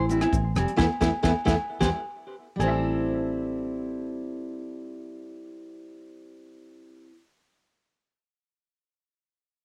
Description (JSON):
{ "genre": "highlife guitar band", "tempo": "130 BPM", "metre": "4/4", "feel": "straight", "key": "A minor", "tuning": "A4 = 440 Hz", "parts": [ { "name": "clean electric guitar", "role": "arpeggios", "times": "0.0-7.1 s", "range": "B3 to E5", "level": "-34 LUFS", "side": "equal", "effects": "warbly pitch drift, cassette tape, analog delay" }, { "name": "fingered electric bass", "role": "bass", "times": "0.0-7.1 s", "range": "F1 to E2", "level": "-30 LUFS", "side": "equal", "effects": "none" }, { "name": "fingerpicked steel-string acoustic guitar", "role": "accompaniment", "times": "0.1-7.2 s", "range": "G3 to E4", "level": "-32 LUFS", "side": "equal", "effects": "cassette tape" }, { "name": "tight funk drum kit", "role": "drums", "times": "0.1-1.9 s", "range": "hi-hat, kick drum, rim click, snare drum", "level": "-31 LUFS", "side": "equal", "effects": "none" }, { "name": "maracas", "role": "percussion", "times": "0.1-2.8 s", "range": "none", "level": "-46 LUFS", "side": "equal", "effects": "none" }, { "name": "agogo bells", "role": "percussion", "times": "0.2-2.7 s", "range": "none", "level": "-33 LUFS", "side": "equal", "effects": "none" } ], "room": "light reverb", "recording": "home recording on cassette", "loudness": "-26 LUFS", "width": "mono", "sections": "0.0-2.6 A section; 2.6-6.3 B section", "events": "clean electric guitar solo 0.0-2.6; band accent 0.8-2.6", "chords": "0.0 Am7; 0.8 Esus4; 1.7 Cmaj7/E; 2.6 Am7", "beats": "0.32 | 0.78 1.24 1.70 2.15 | 2.61 3.07 3.53 3.99 | 4.45 4.91 5.37 5.83" }